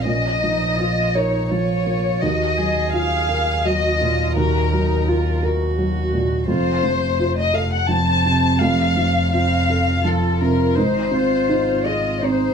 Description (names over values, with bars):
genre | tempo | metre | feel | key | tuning
neoclassical piano and strings | 84 BPM | 3/4 | rubato | unclear | A4 = 440 Hz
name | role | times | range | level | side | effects
warm chamber violin section | melody | 0.0-12.5 s | A4 to A5 | -20 LUFS | left 3 dB | none
dark cello | second line | 0.0-12.5 s | A3 to Ab4 | -27 LUFS | right 5 dB | none
felt-muted upright piano | accompaniment | 0.0-12.5 s | Eb2 to Bb4 | -22 LUFS | right 2 dB | none
dark double bass | bass | 0.0-12.5 s | F1 to Eb2 | -23 LUFS | left 1 dB | none
room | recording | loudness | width
light reverb | small room ambience | -17 LUFS | side -6 dB against mid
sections
0.0-12.5 A section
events
none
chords
0.0 Bbm; 2.2 Ebmadd9; 6.5 F; 10.8 Ab